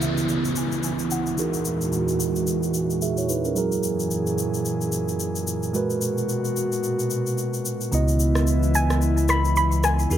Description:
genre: amapiano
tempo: 110 BPM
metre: 4/4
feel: swing 58% on 16ths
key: C# dorian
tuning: A4 = 440 Hz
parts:
  - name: soft round pluck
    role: melody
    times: 0.0-2.7, 8.8-10.2 s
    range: E5 to B5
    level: -26 LUFS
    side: equal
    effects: chorus, low-pass filter, digital delay
  - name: bell-like tine electric piano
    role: accompaniment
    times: 0.0-10.2 s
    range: C#3 to E5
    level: -26 LUFS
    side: right 3 dB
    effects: low-pass filter
  - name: airy breathy pad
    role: sustained chords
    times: 0.0-10.2 s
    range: C#2 to G#4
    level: -26 LUFS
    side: equal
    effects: chorus, low-pass filter
  - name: electronic shaker and rim click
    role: drums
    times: 0.0-10.2 s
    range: none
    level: -31 LUFS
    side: left 4 dB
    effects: none
  - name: downlifter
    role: sound effects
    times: 0.0-3.6 s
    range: none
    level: -34 LUFS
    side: left 2 dB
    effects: none
  - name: saturated sub bass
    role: bass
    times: 7.9-10.2 s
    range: C#2 to E2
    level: -21 LUFS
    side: left 1 dB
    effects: none
room: light reverb, digital ambience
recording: none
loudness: -21 LUFS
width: side -10 dB against mid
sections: 0.0-10.2 A section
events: filter sweep 0.0-10.2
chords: 0.0 C#m7; 1.4 Emaj9#11; 3.6 F#9; 5.7 G#m9; 7.9 C#m9

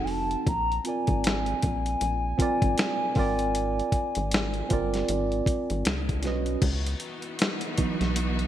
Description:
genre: R&B, neo-soul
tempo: 78 BPM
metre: 4/4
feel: swing 60% on 16ths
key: unclear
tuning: A4 = 437 Hz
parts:
  - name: hollow clarinet-like synth lead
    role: melody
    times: 0.0-5.8 s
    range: Ab5 to Bb5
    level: -30 LUFS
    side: left 1 dB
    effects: chorus, ping-pong delay
  - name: tine electric piano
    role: accompaniment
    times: 0.0-8.5 s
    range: Fb3 to Eb5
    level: -30 LUFS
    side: right 3 dB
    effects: lush chorus
  - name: rubbery square bass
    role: bass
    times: 0.0-8.5 s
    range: F1 to Db2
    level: -30 LUFS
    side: equal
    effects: none
  - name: dusty soul sampler-style drum kit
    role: drums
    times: 0.1-8.5 s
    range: crash cymbal, hi-hat, kick drum, snare drum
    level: -28 LUFS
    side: equal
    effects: gated reverb
  - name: clear studio string section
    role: sustained chords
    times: 6.6-8.5 s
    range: Fb3 to Gb4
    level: -34 LUFS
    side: left 1 dB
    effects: none
room: light reverb, digital ambience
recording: bright 1980s-style digital production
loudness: -24 LUFS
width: side -11 dB against mid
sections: 0.0-6.6 A section; 6.6-8.5 B section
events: tine electric piano solo 6.6-8.5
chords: 0.5 Bb9; 3.2 Ab69; 5.9 Db9sus4; 6.6 Dbm11

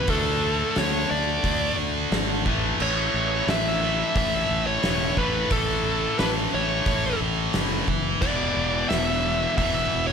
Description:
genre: quiet-loud alternative rock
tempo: 88 BPM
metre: 4/4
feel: straight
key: unclear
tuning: A4 = 440 Hz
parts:
  - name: bluesy overdriven lead guitar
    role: melody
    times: 0.0-10.1 s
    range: A4 to E5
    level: -26 LUFS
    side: equal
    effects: distortion
  - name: heavy high-gain guitar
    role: riff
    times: 0.0-10.1 s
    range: E2 to D4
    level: -28 LUFS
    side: right 15 dB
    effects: distortion
  - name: high-gain distorted guitar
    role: riff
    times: 0.0-10.1 s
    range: E2 to D4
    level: -28 LUFS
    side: left 13 dB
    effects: distortion
  - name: fuzz fingered electric bass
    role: bass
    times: 0.1-10.1 s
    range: E1 to D2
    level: -30 LUFS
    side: right 1 dB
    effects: overdrive
  - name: oversized low-tuned drum kit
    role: drums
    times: 0.1-9.7 s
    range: crash cymbal, hi-hat, kick drum, snare drum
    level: -28 LUFS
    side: equal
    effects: none
room: light reverb, small room reverb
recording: none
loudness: -21 LUFS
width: side -6 dB against mid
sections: 0.0-10.1 A section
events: none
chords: 0.1 D5; 2.5 A; 8.2 E5

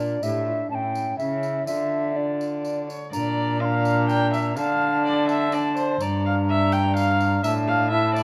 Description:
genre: classical, renaissance-style consort dance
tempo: 125 BPM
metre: 3/4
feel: straight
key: D minor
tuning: A4 = 440 Hz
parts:
  - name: mellow hollow alto recorder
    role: melody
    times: 0.0-8.2 s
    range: D5 to C6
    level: -30 LUFS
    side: equal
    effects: none
  - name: warm viola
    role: second line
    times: 0.0-8.2 s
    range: E4 to G5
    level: -29 LUFS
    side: equal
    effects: none
  - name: warm trombone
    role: accompaniment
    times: 0.0-8.2 s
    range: C#4 to E4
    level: -29 LUFS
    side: equal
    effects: none
  - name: rich cello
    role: bass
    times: 0.0-8.2 s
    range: G2 to D3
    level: -28 LUFS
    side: equal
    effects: none
  - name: tambourine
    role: percussion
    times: 0.2-8.2 s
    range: none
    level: -47 LUFS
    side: equal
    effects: none
room: moderate recital hall reverb, RT60 1.6 s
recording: dark, warm production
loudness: -23 LUFS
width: mono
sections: 0.0-3.1 A section; 3.1-8.2 A section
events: none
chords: 0.2 A7sus4; 0.7 A7; 1.7 Dm; 3.1 Bb; 4.6 Dm; 6.0 Gm; 7.4 Asus4

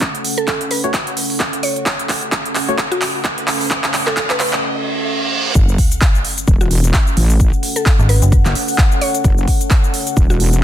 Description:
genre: bass house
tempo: 130 BPM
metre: 4/4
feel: swing 57% on 16ths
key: F# minor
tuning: A4 = 440 Hz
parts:
  - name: big-room dance drum kit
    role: drums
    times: 0.0-10.6 s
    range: handclaps, hi-hat, shaker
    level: -19 LUFS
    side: right 1 dB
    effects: overdrive
  - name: electronic kick drum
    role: drums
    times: 0.0-10.3 s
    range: none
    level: -14 LUFS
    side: equal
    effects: high-pass filter on kick
  - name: riser, reverse cymbal and sub drop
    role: sound effects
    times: 2.3-7.4 s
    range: none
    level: -25 LUFS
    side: right 2 dB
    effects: none
  - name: deep dark ambient pad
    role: texture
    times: 0.0-10.6 s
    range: C#4 to F#5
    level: -24 LUFS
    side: equal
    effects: chorus, built-in reverb, sidechain pumping
  - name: mallet-like synth pluck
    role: melody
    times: 0.4-10.5 s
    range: F#4 to C#5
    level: -23 LUFS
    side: right 1 dB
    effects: chorus, ping-pong delay
  - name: percussive organ stab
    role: stabs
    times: 0.8-2.8 s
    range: A3 to C#5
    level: -22 LUFS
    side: left 2 dB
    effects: wide subtle chorus, sidechain pumping, ping-pong delay
  - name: wobble bass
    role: bass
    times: 5.6-10.6 s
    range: E1 to A1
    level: -14 LUFS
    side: equal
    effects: chorus, overdrive, sidechain pumping
  - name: metallic FM bass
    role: bass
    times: 8.0-8.4 s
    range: F#1 to G#1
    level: -12 LUFS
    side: equal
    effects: tube saturation, sidechain pumping
room: light reverb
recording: dense, heavily limited modern master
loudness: -13 LUFS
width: side -11 dB against mid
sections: 0.0-5.6 A section; 5.6-10.6 B section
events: build-up 0.0-5.6; drum fill 0.0-4.6; riser 2.3-5.6; break 4.6-5.6; reverse cymbal 4.6-5.6; drop 5.6-10.6; impact 5.6-7.4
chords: 0.0 F#m

